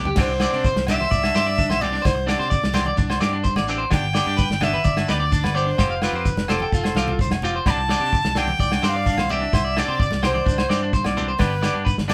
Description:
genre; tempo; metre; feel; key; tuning
highlife guitar band; 128 BPM; 4/4; straight; C major; A4 = 441 Hz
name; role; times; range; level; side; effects
clean electric guitar; accompaniment; 0.0-12.1 s; E3 to G4; -31 LUFS; equal; none
fingered electric bass; bass; 0.0-12.1 s; F1 to C3; -29 LUFS; equal; none
electric guitar at the edge of break-up; arpeggios; 0.1-12.1 s; D4 to G5; -28 LUFS; equal; none
warm soul drum kit; drums; 0.1-12.1 s; crash cymbal, kick drum, snare drum, toms; -25 LUFS; equal; none
breathy bright alto recorder; melody; 0.2-12.1 s; A4 to B5; -27 LUFS; equal; none
agogo bells; percussion; 0.2-12.1 s; none; -35 LUFS; equal; none
shekere; percussion; 0.2-12.1 s; none; -37 LUFS; equal; none
congas; percussion; 0.8-12.1 s; none; -35 LUFS; equal; none
room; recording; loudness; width
moderate studio reverb, RT60 0.5 s; band playing live in one room; -21 LUFS; mono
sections
0.2-12.1 A section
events
drum fill 0.0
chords
0.2 Cadd9; 3.9 G; 5.8 Fsus2; 7.7 Cadd9; 11.4 G

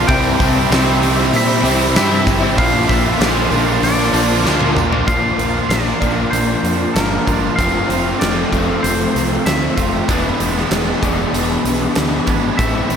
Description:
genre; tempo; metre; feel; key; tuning
rock, shoegaze and dream pop; 96 BPM; 4/4; straight; Bb lydian; A4 = 440 Hz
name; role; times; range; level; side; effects
twangy electric guitar; melody; 0.0-13.0 s; Bb4 to G5; -23 LUFS; equal; spring reverb, tape echo
picked plugged-in twelve-string acoustic guitar; arpeggios; 0.0-13.0 s; E3 to Bb4; -26 LUFS; right 5 dB; wide subtle chorus, tape echo
biting overdriven guitar; riff; 0.0-13.0 s; E2 to F4; -21 LUFS; right 7 dB; reverse reverb
cranked stack guitar; riff; 0.0-5.1 s; Bb2 to C4; -23 LUFS; equal; overdrive
overdriven electric guitar; riff; 0.0-13.0 s; A2 to G#4; -20 LUFS; left 6 dB; analog chorus
growling fingered electric bass; bass; 0.0-13.0 s; E1 to Bb2; -21 LUFS; equal; overdrive
huge arena drum kit; drums; 0.1-13.0 s; hi-hat, kick drum, snare drum, toms; -20 LUFS; equal; none
tambourine; percussion; 0.4-4.9 s; none; -33 LUFS; left 9 dB; none
room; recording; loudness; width
wet huge ambient reverb, RT60 8.4 s; dreamy mix soaked in reverb; -13 LUFS; side -7 dB against mid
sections
0.0-5.1 A section; 5.1-13.0 B section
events
drum fill 4.5-5.1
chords
0.1 C; 2.6 Bbadd9; 5.1 Bb; 7.6 F; 10.1 E7

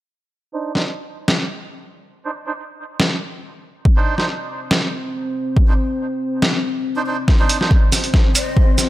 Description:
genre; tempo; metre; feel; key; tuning
deep dubstep; 140 BPM; 4/4; half-time; C minor; A4 = 440 Hz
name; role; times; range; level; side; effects
melodica; stabs; 0.5-7.7 s; D4 to C5; -26 LUFS; right 4 dB; low-pass filter, dub echo
trip hop sampler-style drum kit; drums; 0.8-8.9 s; hi-hat, shaker, snare drum; -19 LUFS; equal; none
dark analog pad; sustained chords; 3.9-8.9 s; C4 to C5; -25 LUFS; left 2 dB; lush chorus
electronic kick drum; drums; 3.9-8.7 s; none; -14 LUFS; equal; none
saturated sub bass; bass; 7.3-8.9 s; C2; -43 LUFS; equal; none
wind-like tuned noise texture; texture; 7.8-8.9 s; C4 to C5; -28 LUFS; left 4 dB; built-in reverb
breathy mellow shakuhachi; melody; 8.4-8.7 s; Eb5; -28 LUFS; left 1 dB; dub echo
room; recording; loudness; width
light reverb, digital ambience; none; -16 LUFS; side -15 dB against mid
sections
0.4-7.3 A section; 7.3-8.9 B section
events
filter sweep on melodica 0.4-7.3; build-up 7.3-8.9; drum fill 7.3-8.9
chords
0.4 Cmadd9

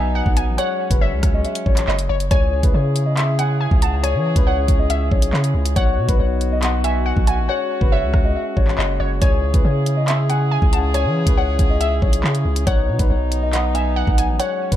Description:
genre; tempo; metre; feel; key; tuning
hip hop, drill; 139 BPM; 4/4; half-time; C# minor; A4 = 440 Hz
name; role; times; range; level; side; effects
dark concert grand piano; melody; 0.0-14.8 s; B4 to G#5; -25 LUFS; left 4 dB; low-pass filter, ping-pong delay
warbly dusty pluck; second line; 0.0-14.8 s; C#5 to A5; -27 LUFS; equal; chorus, phaser, ping-pong delay
dark brass ensemble; sustained chords; 0.0-14.8 s; C#3 to G#4; -26 LUFS; left 1 dB; none
long sustained 808-style bass; bass; 0.0-14.8 s; F#1 to E3; -20 LUFS; equal; none
drill drum kit; drums; 0.3-14.8 s; handclaps, hi-hat, kick drum, rim click; -19 LUFS; equal; none
room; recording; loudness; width
light reverb; none; -16 LUFS; side -12 dB against mid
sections
0.0-2.3 A section; 2.3-14.8 A section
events
hi-hats muted 7.5-9.2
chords
0.0 B; 0.6 F#sus2; 2.3 C#m; 5.8 B; 7.5 F#sus2; 9.2 C#m; 12.7 B

